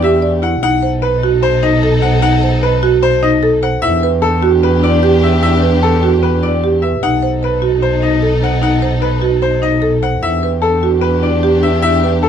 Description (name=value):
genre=classical, minimalist pattern music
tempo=150 BPM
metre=4/4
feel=straight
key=E minor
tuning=A4 = 440 Hz
part: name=bright baby grand piano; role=melody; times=0.0-12.3 s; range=A4 to F#5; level=-17 LUFS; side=left 6 dB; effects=none
part: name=dark studio violin section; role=sustained chords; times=0.0-12.3 s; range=D4 to A4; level=-22 LUFS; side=left 4 dB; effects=none
part: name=marimba with medium mallets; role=arpeggios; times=0.0-12.3 s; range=D#4 to D5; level=-15 LUFS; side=right 3 dB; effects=none
part: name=rich double bass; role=bass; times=0.0-12.3 s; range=B1 to E2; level=-15 LUFS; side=right 2 dB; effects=none
room=light reverb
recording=dark, warm production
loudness=-11 LUFS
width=side -8 dB against mid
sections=0.6-12.3 A section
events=none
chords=0.0 Em7; 0.6 B7b9; 3.8 Em11; 7.0 B7b9; 10.2 Em11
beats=0.23 | 0.63 1.03 1.43 1.83 | 2.23 2.63 3.03 3.43 | 3.83 4.23 4.63 5.03 | 5.43 5.83 6.23 6.63 | 7.03 7.43 7.83 8.23 | 8.63 9.03 9.43 9.83 | 10.23 10.63 11.03 11.43 | 11.83 12.23